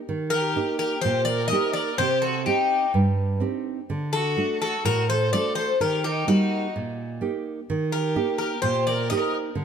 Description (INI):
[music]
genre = greek folk, Greek bouzouki band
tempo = 126 BPM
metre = 4/4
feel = straight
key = unclear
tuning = A4 = 441 Hz
[part]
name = nylon-string guitar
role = accompaniment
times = 0.1-9.6 s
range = G2 to G4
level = -25 LUFS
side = right 3 dB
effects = none
[part]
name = Greek bouzouki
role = melody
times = 0.3-9.3 s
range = F#4 to Eb5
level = -24 LUFS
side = left 3 dB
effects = none
[part]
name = bright violin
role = second line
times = 0.3-9.3 s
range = Eb4 to Bb4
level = -30 LUFS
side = equal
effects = none
[sound]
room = moderate plate reverb, RT60 2.4 s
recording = dark, warm production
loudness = -22 LUFS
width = side -7 dB against mid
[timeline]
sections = 0.1-9.6 A section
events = none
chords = 0.1 Eb; 2.0 Cm; 3.9 D; 5.8 Eb